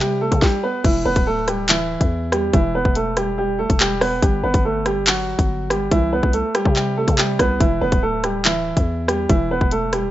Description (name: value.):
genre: hip hop, drill.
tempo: 142 BPM.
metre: 4/4.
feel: half-time.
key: E minor.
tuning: A4 = 445 Hz.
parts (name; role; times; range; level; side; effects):
warm concert grand piano; melody; 0.0-10.1 s; E3 to B4; -20 LUFS; right 1 dB; none.
growling 808-style bass; bass; 0.0-10.1 s; D1 to C3; -24 LUFS; left 1 dB; none.
drill drum kit; drums; 0.0-10.0 s; crash cymbal, handclaps, hi-hat, kick drum, rim click, snare drum; -18 LUFS; left 1 dB; none.
room: little or no reverb.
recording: rough home demo mix, nothing above 7.7 kHz.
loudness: -16 LUFS.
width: side -14 dB against mid.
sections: 0.8-10.1 A section.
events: none.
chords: 0.0 C5; 0.8 Em; 4.2 G; 5.9 C; 7.6 Em.